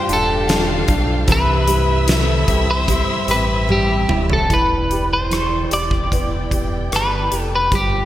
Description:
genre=pop ballad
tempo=75 BPM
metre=4/4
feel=straight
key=unclear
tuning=A4 = 440 Hz
part: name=twelve-string electric guitar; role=melody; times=0.0-8.1 s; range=G4 to D5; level=-20 LUFS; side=left 1 dB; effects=spring reverb
part: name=warm studio violin section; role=second line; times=0.0-4.5 s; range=E4 to G5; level=-26 LUFS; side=left 2 dB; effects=none
part: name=warm grand piano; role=accompaniment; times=0.0-8.1 s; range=C3 to G4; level=-25 LUFS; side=right 3 dB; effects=wide subtle chorus
part: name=warm studio string section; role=sustained chords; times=0.0-8.1 s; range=C4 to E6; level=-28 LUFS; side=left 1 dB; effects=none
part: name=picked steel-string acoustic guitar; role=arpeggios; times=0.0-5.0 s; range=C3 to C5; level=-27 LUFS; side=left 4 dB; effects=analog chorus
part: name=sub bass with octave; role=bass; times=0.1-8.1 s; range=D1 to C2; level=-22 LUFS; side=equal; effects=none
part: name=huge arena drum kit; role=drums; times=0.1-7.9 s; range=hi-hat, kick drum, rim click, snare drum, toms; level=-21 LUFS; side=equal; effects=gated reverb
room=light reverb, studio reverb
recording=bright 1980s-style digital production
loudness=-15 LUFS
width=side -13 dB against mid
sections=0.0-4.5 A section; 4.5-8.1 B section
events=drum fill 3.7-4.5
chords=0.0 G7sus4; 1.3 Cmaj7; 4.5 Em7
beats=0.49 | 1.28 2.08 2.89 3.70 | 4.51 5.32 6.12 6.92 | 7.72

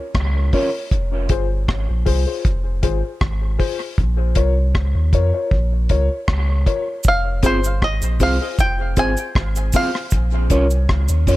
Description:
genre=dub reggae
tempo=78 BPM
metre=4/4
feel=straight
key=F minor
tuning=A4 = 440 Hz
part: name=deep reggae drum kit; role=drums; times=0.1-11.4 s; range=hi-hat, kick drum, rim click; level=-20 LUFS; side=equal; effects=none
part: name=warm sub bass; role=bass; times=0.2-11.4 s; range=F1 to F2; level=-19 LUFS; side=equal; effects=none
part: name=mellow electric guitar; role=accompaniment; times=0.5-0.7, 7.4-11.4 s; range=C4 to Db5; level=-26 LUFS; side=right 3 dB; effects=dub echo
part: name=dark upright piano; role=stabs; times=0.5-11.4 s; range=F4 to Db5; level=-25 LUFS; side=left 5 dB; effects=dub echo
part: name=cabasa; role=percussion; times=7.0-11.4 s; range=none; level=-31 LUFS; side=right 6 dB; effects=none
part: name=bluegrass banjo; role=melody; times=7.1-10.9 s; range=C5 to Ab5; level=-22 LUFS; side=right 1 dB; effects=dub echo
room=light reverb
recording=none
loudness=-16 LUFS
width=side -17 dB against mid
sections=0.0-11.4 A section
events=break 0.0-7.0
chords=0.0 Bbm; 0.9 Fm; 4.0 Bbm; 7.0 Fm; 10.1 Bbm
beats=0.14 | 0.91 1.68 2.45 3.21 | 3.98 4.75 5.51 6.28 | 7.05 7.82 8.58 9.35 | 10.12 10.88

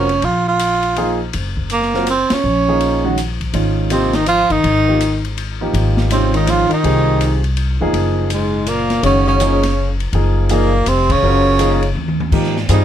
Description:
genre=modal jazz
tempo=164 BPM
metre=3/4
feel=swing 64% on 8ths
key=unclear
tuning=A4 = 440 Hz
part: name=breathy tenor saxophone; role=melody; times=0.0-12.8 s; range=Ab3 to F4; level=-16 LUFS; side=right 4 dB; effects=none
part: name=warm upright piano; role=accompaniment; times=0.0-12.8 s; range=Eb3 to C5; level=-20 LUFS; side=right 1 dB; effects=none
part: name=upright bass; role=bass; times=0.0-12.8 s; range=F1 to Ab2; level=-18 LUFS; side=left 1 dB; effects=none
part: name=open jazz drum kit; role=drums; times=0.1-12.8 s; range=crash cymbal, hi-hat, kick drum, ride cymbal, snare drum, toms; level=-24 LUFS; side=left 2 dB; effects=none
part: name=breathy tenor saxophone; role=second line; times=3.9-12.0 s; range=Ab2 to F3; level=-20 LUFS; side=left 6 dB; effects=none
room=light reverb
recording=close, detailed microphones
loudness=-13 LUFS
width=side -10 dB against mid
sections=0.0-12.3 A section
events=band accent 2.3, 11.0; drum fill 12.0-12.3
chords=0.0 Gbmaj9; 3.5 Abmaj9; 7.9 Gbmaj9; 12.3 Abmaj9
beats=| 0.23 0.60 0.97 | 1.33 1.70 2.07 | 2.44 2.81 3.17 | 3.54 3.91 4.28 | 4.64 5.01 5.38 | 5.74 6.11 6.47 | 6.84 7.21 7.57 | 7.94 8.30 8.67 | 9.03 9.40 9.76 | 10.13 10.49 10.86 | 11.23 11.59 11.96 | 12.32 12.69

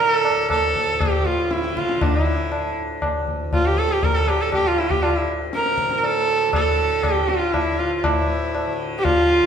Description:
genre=indian classical, Hindustani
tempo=119 BPM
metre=3/4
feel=straight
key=D raga darbari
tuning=A4 = 440 Hz
part: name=clear sarangi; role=melody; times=0.0-9.5 s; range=E4 to Bb4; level=-20 LUFS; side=right 1 dB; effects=none
part: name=tanpura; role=drone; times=0.0-9.5 s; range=D2 to D3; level=-30 LUFS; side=left 2 dB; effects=none
part: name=tabla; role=percussion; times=0.0-9.5 s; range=none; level=-23 LUFS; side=left 1 dB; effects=none
room=wet recital hall reverb, RT60 1.4 s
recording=recorded in a church or concert hall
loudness=-18 LUFS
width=side -8 dB against mid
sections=0.0-8.0 A section; 8.0-9.5 B section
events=none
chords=none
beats=| 0.50 1.00 1.50 | 2.01 2.51 3.02 | 3.52 4.02 4.52 | 5.03 5.53 6.03 | 6.53 7.04 7.54 | 8.04 8.54 9.04

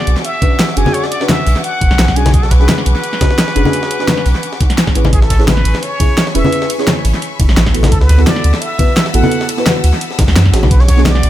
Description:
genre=liquid drum and bass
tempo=172 BPM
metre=4/4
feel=swing 54% on 16ths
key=B dorian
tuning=A4 = 441 Hz
part: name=trumpet with plunger mute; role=melody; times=0.0-11.3 s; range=G#4 to G#5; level=-21 LUFS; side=equal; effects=dub echo
part: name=deep mellow chord stab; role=accompaniment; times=0.0-11.3 s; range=B3 to C#5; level=-19 LUFS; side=equal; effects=chorus, digital delay
part: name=bright studio string section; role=sustained chords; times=0.0-11.3 s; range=E5 to E6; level=-25 LUFS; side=left 4 dB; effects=none
part: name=warm sub bass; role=bass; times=0.1-11.3 s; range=E1 to F#2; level=-11 LUFS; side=equal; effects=none
part: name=breakbeat sampler-style drum kit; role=drums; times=0.1-11.3 s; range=hi-hat, snare drum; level=-24 LUFS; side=equal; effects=high-pass filter on hats, high-pass filter on snare
part: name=pop drum kit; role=drums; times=0.1-11.3 s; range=hi-hat, ride cymbal, snare drum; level=-17 LUFS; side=equal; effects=none
part: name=electronic kick drum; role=drums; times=0.4-11.0 s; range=none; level=-13 LUFS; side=equal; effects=none
part: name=congas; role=percussion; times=0.4-11.1 s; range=none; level=-20 LUFS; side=left 3 dB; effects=none
room=little or no reverb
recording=none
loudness=-10 LUFS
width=side -13 dB against mid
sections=0.0-11.3 A section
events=none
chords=0.0 Bm69; 5.1 Amaj7; 7.9 D6; 10.7 Bm69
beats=0.24 0.59 | 0.94 1.29 1.64 1.99 | 2.34 2.69 3.04 3.38 | 3.73 4.08 4.43 4.78 | 5.13 5.48 5.83 6.18 | 6.52 6.87 7.22 7.57 | 7.92 8.27 8.62 8.97 | 9.31 9.66 10.01 10.36 | 10.71 11.06

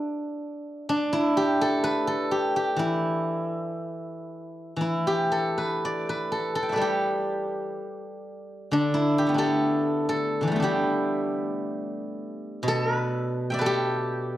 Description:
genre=chinese traditional, Chinese solo plucked strings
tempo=59-64 BPM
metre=2/4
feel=rubato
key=G gong mode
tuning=A4 = 440 Hz
part: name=steel-string zither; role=solo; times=0.0-14.4 s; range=B2 to G5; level=-24 LUFS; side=equal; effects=slapback echo
room=moderate recital hall reverb, RT60 1.3 s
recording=worn, warbling old tape, cassette tape, warbly pitch drift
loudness=-24 LUFS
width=side -14 dB against mid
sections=0.0-12.6 A section; 12.6-14.4 B section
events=none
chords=none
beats=| 0.90 1.85 | 2.80 3.78 | 4.79 5.81 | 6.80 7.77 | 8.72 9.67 | 10.63 11.63 | 12.65 13.64

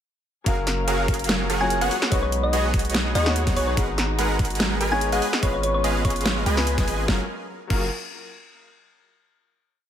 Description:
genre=future bass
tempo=145 BPM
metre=4/4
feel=swing 53% on 16ths, half-time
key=F# major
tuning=A4 = 439 Hz
part: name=warm grand piano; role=accompaniment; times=0.4-7.9 s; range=F#3 to E#5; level=-30 LUFS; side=left 6 dB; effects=sidechain pumping, digital delay
part: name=dark symphonic string section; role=sustained chords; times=0.5-7.3 s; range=F#3 to A#5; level=-34 LUFS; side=right 2 dB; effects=sidechain pumping
part: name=supersaw stab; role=riff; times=0.5-7.9 s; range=F#3 to G#5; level=-27 LUFS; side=right 1 dB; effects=sidechain pumping, digital delay
part: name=long sustained 808-style bass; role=bass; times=0.5-7.9 s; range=F#1 to D#2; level=-26 LUFS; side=equal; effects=tube saturation, sidechain pumping
part: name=dubstep drum kit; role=drums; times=0.5-7.8 s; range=crash cymbal, hi-hat, snare drum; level=-26 LUFS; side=equal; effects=none
part: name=electronic kick drum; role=drums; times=0.5-7.8 s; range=none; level=-24 LUFS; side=equal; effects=none
part: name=thumb-piano-like synth pluck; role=melody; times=1.6-6.4 s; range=C#5 to G#5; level=-27 LUFS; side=equal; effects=chorus, sidechain pumping, dub echo
room=light reverb, digital ambience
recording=none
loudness=-20 LUFS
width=side -10 dB against mid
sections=0.5-7.1 drop; 7.1-8.7 final chord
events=drop 0.5-7.1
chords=0.5 F#maj7; 1.9 B6; 3.8 G#m7; 5.2 C#7/G#; 7.1 F#maj7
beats=| 0.46 0.88 1.29 1.70 | 2.12 2.53 2.94 3.36 | 3.77 4.19 4.60 5.01 | 5.43 5.84 6.25 6.67 | 7.08 7.50

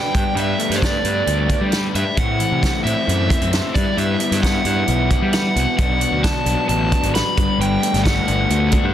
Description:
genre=indie rock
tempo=133 BPM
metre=4/4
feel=straight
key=G major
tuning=A4 = 440 Hz
part: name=crunchy overdriven guitar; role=melody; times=0.0-8.9 s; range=C5 to B5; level=-22 LUFS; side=equal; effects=slapback echo
part: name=overdriven electric guitar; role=riff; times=0.0-8.9 s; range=A2 to C5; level=-24 LUFS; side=left 9 dB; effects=none
part: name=raw garage guitar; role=riff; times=0.0-8.9 s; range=E3 to E4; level=-26 LUFS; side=right 6 dB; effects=overdrive, analog chorus, slapback echo
part: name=vintage drum kit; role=drums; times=0.1-8.8 s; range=hi-hat, kick drum, snare drum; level=-21 LUFS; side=equal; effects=none
part: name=fuzz picked electric bass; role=bass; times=0.2-8.9 s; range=G1 to G3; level=-21 LUFS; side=equal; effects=overdrive
room=light reverb, small room ambience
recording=dense, heavily limited modern master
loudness=-16 LUFS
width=side -10 dB against mid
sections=0.0-8.9 A section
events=none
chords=0.1 Gadd9; 2.2 Am; 3.8 Emadd9/G; 5.8 Bm; 7.4 Gadd9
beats=| 0.36 0.82 1.27 1.72 | 2.17 2.62 3.08 3.53 | 3.98 4.43 4.88 5.34 | 5.79 6.24 6.69 7.15 | 7.60 8.05 8.50

